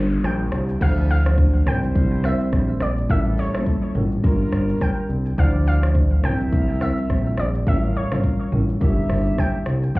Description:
afrobeats; 105 BPM; 4/4; swing 58% on 16ths; D minor; A4 = 440 Hz
marimba with soft mallets; accompaniment; 0.0-10.0 s; E3 to C5; -25 LUFS; left 1 dB
fat analog bass; bass; 0.0-10.0 s; G1 to D2; -20 LUFS; equal
noise sweep; sound effects; 0.0-0.8 s; -40 LUFS; left 4 dB
deep house drum kit; drums; 0.1-10.0 s; crash cymbal, hi-hat, kick drum, rim click, shaker, toms; -22 LUFS; equal
analog pluck; melody; 0.3-10.0 s; C#5 to G5; -30 LUFS; equal; chorus, digital delay
warm horn section; second line; 0.8-10.0 s; F3 to F5; -32 LUFS; right 2 dB
little or no reverb; heard muffled through a wall, club reverb, EQ; -18 LUFS; side -21 dB against mid
0.8-10.0 A section
break 0.0-0.8; noise sweep 0.0-0.8
0.0 Gm7; 0.8 Dm9; 1.7 C7; 3.1 A7b9b13; 4.2 Gm7; 5.4 Dm9; 6.2 C7; 7.7 A7b9b13; 8.8 Gm7

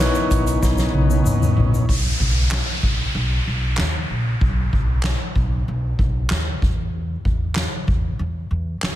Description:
piano-driven pop; 95 BPM; 4/4; straight; B major; A4 = 440 Hz
warm concert grand piano; accompaniment; 0.0-1.9 s; D#3 to C#5; -23 LUFS; left 1 dB
tonewheel organ; sustained chords; 0.0-1.9 s; B3 to D#4; -28 LUFS; equal; overdrive, slow rotary speaker
upright bass; bass; 0.0-9.0 s; A#1 to E2; -22 LUFS; equal
soft-mallet drum kit; drums; 0.0-9.0 s; crash cymbal, handclaps, hi-hat, kick drum, snare drum, toms; -21 LUFS; equal
egg shaker; percussion; 0.1-1.9 s; -35 LUFS; left 8 dB
downlifter; sound effects; 1.9-6.9 s; -28 LUFS; equal
studio reverb; -18 LUFS; side -13 dB against mid
0.0-1.9 A section; 1.9-9.0 B section
grand piano solo 0.0-1.9; drum fill 0.6-1.9
0.0 Badd9; 1.9 N.C.

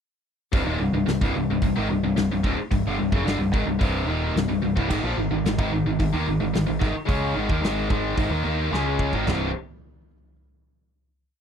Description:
heavy metal; 110 BPM; 4/4; straight; C phrygian; A4 = 440 Hz
tight distorted guitar; riff; 0.5-9.5 s; C2 to Eb4; -23 LUFS; left 1 dB; distortion
growling picked electric bass; bass; 0.5-9.5 s; C1 to Eb2; -28 LUFS; equal; overdrive
big rock drum kit; drums; 0.5-9.4 s; crash cymbal, hi-hat, kick drum, snare drum, toms; -27 LUFS; equal
little or no reverb; dry, close 1970s-style studio recording; -21 LUFS; side -8 dB against mid
0.5-9.3 riff; 9.3-11.4 final chord
drum fill 8.7-9.3
0.5 Cm; 4.9 Ab5; 9.3 C5

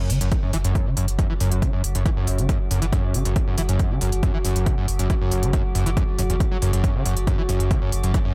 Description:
driving peak-time techno; 138 BPM; 4/4; straight; A4 = 440 Hz
screaming distorted acid line; riff; 0.0-8.3 s; E2 to F#3; -27 LUFS; equal; distortion, ensemble chorus, sidechain pumping, tape echo
metallic inharmonic drone; drone; 0.6-8.3 s; F#3 to F#4; -34 LUFS; equal; chorus, built-in reverb, sidechain pumping
saturated sub bass; bass; 0.1-8.1 s; F#1; -28 LUFS; equal; tube saturation, sidechain pumping, low-pass filter
electronic hi-hat; drums; 0.1-8.2 s; -34 LUFS; equal; sidechain pumping on hats, sidechain pumping on toms, sidechain pumping on cymbals
electronic kick drum; drums; 0.3-8.2 s; -25 LUFS; equal
little or no reverb; -22 LUFS; mono
0.0-8.3 A section
0.0 F#5

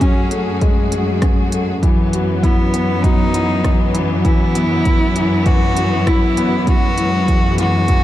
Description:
piano and strings electronica; 99 BPM; 4/4; straight; A4 = 440 Hz
rich cello; melody; 0.0-8.0 s; B3 to F#4; -21 LUFS; equal; ping-pong delay
clear studio string section; sustained chords; 0.0-8.0 s; E3 to G#4; -25 LUFS; left 1 dB; sidechain pumping
felt-muted upright piano; riff; 0.0-8.0 s; E3 to F#4; -20 LUFS; left 2 dB; ping-pong delay
rich symphonic cello section; bass; 0.0-8.0 s; F#2; -20 LUFS; equal; sidechain pumping
deep house drum kit; drums; 0.0-8.0 s; hi-hat, rim click; -29 LUFS; equal
electronic kick drum; drums; 0.0-8.0 s; -16 LUFS; equal
small room ambience; dark, warm production; -13 LUFS; side -13 dB against mid
0.0-8.0 A section
0.0 F#madd9; 1.8 Bsus4/F#

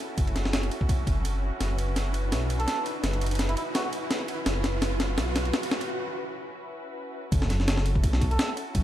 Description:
drum and bass, jungle; 168 BPM; 4/4; swing 55% on 16ths; F# minor; A4 = 442 Hz
muted studio string section; sustained chords; 0.0-8.8 s; C#4 to B4; -36 LUFS; equal; vintage 12-bit sampler grit
breakbeat sampler-style drum kit; drums; 0.0-8.8 s; kick drum, ride cymbal, snare drum; -28 LUFS; equal
riser; sound effects; 0.1-5.9 s; -36 LUFS; right 2 dB
dark detuned saw bass; bass; 0.2-8.8 s; F#1 to B1; -27 LUFS; equal; tube saturation
trumpet with cup mute; melody; 2.6-3.9, 8.3-8.5 s; E4 to A4; -33 LUFS; right 2 dB; dub echo
light reverb, digital ambience; dark, warm production; -25 LUFS; side -12 dB against mid
0.0-7.3 A section; 7.3-8.8 B section
build-up 0.0-7.3; riser 0.1-5.9; drum fill 1.6-5.9; break 5.9-7.3; drop 7.3-8.8
0.0 F#m7

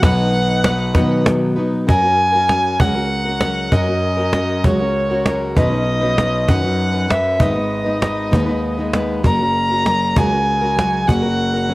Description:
acoustic folk duo or small band; 65 BPM (dotted quarters); 6/8; straight; F# major; A4 = 441 Hz
dark fiddle; melody; 0.0-11.7 s; C#5 to A#5; -19 LUFS; equal; cassette tape
picked plugged-in steel-string acoustic guitar; accompaniment; 0.0-11.7 s; G#2 to B4; -21 LUFS; left 1 dB; cassette tape
dark concert grand piano; bass; 0.0-11.7 s; F#1 to B2; -21 LUFS; equal
cajon; percussion; 0.0-11.2 s; -17 LUFS; equal
moderate spring reverb, RT60 1.7 s, small room ambience; home recording on cassette; -14 LUFS; side -20 dB against mid
0.0-1.9 A section; 1.9-11.7 B section
0.0 B; 1.9 F#; 5.6 Badd9; 7.4 G#m; 9.2 F#

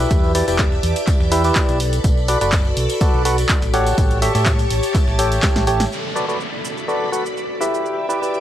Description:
piano house; 124 BPM; 4/4; swing 53% on 16ths; B minor; A4 = 441 Hz
string machine, violins; sustained chords; 0.0-8.4 s; G4 to D6; -27 LUFS; equal; ensemble chorus, sidechain pumping
percussive organ stab; riff; 0.0-8.4 s; E4 to G5; -21 LUFS; equal; chorus, sidechain pumping
fingered electric bass; bass; 0.0-5.9 s; E1 to A2; -21 LUFS; equal; sidechain pumping
tambourine; percussion; 0.0-5.9 s; -36 LUFS; left 4 dB
warbly tape-like pad; texture; 0.0-8.4 s; E4 to A5; -27 LUFS; left 1 dB; chorus, built-in reverb, phaser, sidechain pumping
dusty soul sampler-style drum kit; drums; 0.1-5.8 s; hi-hat, snare drum, tambourine; -35 LUFS; left 1 dB
electronic kick drum; drums; 0.1-5.5 s; -18 LUFS; equal
punchy analog drum machine; drums; 0.1-8.4 s; handclaps, hi-hat, shaker, snare drum; -24 LUFS; equal
downlifter; sound effects; 5.9-8.4 s; -30 LUFS; equal
little or no reverb; dry, gritty hardware recording; -16 LUFS; side -11 dB against mid
0.0-5.9 A section; 5.9-8.4 B section
drum fill 5.4-5.9; band accent 5.8
0.1 Em7; 1.8 Bm7; 3.7 A7; 5.9 Bm7; 7.8 Em7

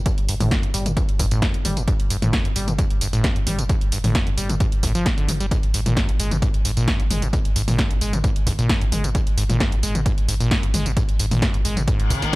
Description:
driving peak-time techno; 132 BPM; 4/4; straight; A4 = 440 Hz
saturated sub bass; bass; 0.0-12.3 s; G1 to Ab1; -25 LUFS; equal; tube saturation, sidechain pumping, low-pass filter
acid bass, saw; riff; 0.1-12.4 s; F2 to Ab3; -25 LUFS; equal; cassette tape, sidechain pumping, digital delay
electronic kick drum; drums; 0.1-12.4 s; -22 LUFS; equal
punchy analog drum machine; drums; 0.1-12.4 s; hi-hat, snare drum, tambourine, toms; -25 LUFS; equal
reverse cymbal; sound effects; 12.0-12.4 s; -25 LUFS; left 6 dB
little or no reverb; -18 LUFS; side -21 dB against mid
0.0-12.4 A section
reverse cymbal 12.0-12.4
0.0 G5; 5.5 N.C.

